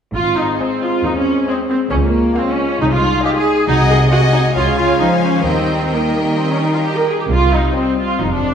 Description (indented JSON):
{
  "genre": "quick classical-period movement for symphony orchestra",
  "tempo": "134 BPM",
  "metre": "4/4",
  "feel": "rubato",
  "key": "Ab major",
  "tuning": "A4 = 440 Hz",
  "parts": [
    { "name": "rich studio viola section", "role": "accompaniment", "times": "0.1-8.5 s", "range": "Bb3 to Bb4", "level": "-17 LUFS", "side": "right 1 dB", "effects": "none" },
    { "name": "dark French horn section", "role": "sustained chords", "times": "0.1-8.5 s", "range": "G3 to Gb4", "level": "-21 LUFS", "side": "left 2 dB", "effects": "none" },
    { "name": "clear chamber double bass section", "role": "bass", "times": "0.1-8.5 s", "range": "F1 to Eb2", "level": "-21 LUFS", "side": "right 1 dB", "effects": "none" },
    { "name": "rich studio cello section", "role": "bass", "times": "0.1-8.5 s", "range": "Eb2 to F3", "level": "-20 LUFS", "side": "equal", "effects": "none" },
    { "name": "clear studio violin section", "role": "melody", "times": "0.6-8.1 s", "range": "G5 to Ab5", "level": "-28 LUFS", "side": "left 3 dB", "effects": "none" },
    { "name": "rich studio violin section", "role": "second line", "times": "0.6-8.1 s", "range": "Bb4 to Gb5", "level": "-22 LUFS", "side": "left 2 dB", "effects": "none" }
  ],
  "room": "wet scoring stage reverb, RT60 1.7 s",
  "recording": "heard from further back in the room",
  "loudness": "-13 LUFS",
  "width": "side -8 dB against mid",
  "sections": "0.1-8.5 A section",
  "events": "none",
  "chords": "0.1 Ab; 1.9 Db; 2.8 Ab/C; 3.7 Ab7/C; 4.6 Db; 5.5 Eb; 7.3 Cm"
}